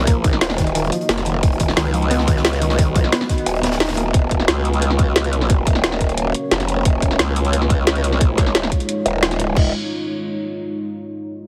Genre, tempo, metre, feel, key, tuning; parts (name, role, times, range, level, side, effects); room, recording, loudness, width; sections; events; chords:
dark technical drum and bass; 177 BPM; 4/4; straight; Eb minor; A4 = 441 Hz
deep dark ambient pad; sustained chords; 0.1-9.7 s; Ab3 to Eb5; -28 LUFS; equal; chorus, built-in reverb, sidechain pumping
growl bass; bass; 0.0-9.7 s; Eb1 to Db2; -22 LUFS; equal; chorus, tube saturation, sidechain pumping
warbly dusty pluck; arpeggios; 0.1-4.1 s; Eb3 to D#4; -27 LUFS; equal; chorus, sidechain pumping, dub echo
crunchy breakbeat drum kit; drums; 0.1-4.1 s; hi-hat, snare drum; -34 LUFS; equal; high-pass filter on hats, high-pass filter on snare, high-pass filter on room
drum and bass drum kit; drums; 0.1-9.6 s; crash cymbal, hi-hat, snare drum; -23 LUFS; equal
electronic kick drum; drums; 0.1-9.6 s; -19 LUFS; equal
light reverb; heavily compressed radio sound, multiband compression; -18 LUFS; mono
0.0-9.6 A section; 9.6-10.9 B section
0.0 Ebm; 1.4 B/D#; 4.1 Gb/Eb; 6.9 Dbadd9/Eb; 9.6 Ebm